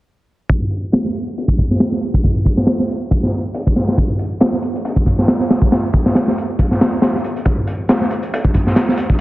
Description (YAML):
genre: breakbeat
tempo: 138 BPM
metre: 4/4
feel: swing 55% on 16ths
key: none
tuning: none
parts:
  - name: crunchy breakbeat drum kit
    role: drums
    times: 0.5-9.2 s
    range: hi-hat, kick drum, snare drum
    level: -14 LUFS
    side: equal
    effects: none
room: light reverb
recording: dense, heavily limited modern master, low-pass filter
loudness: -14 LUFS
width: side -18 dB against mid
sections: 0.5-9.2 A section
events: filter sweep 0.5-9.2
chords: none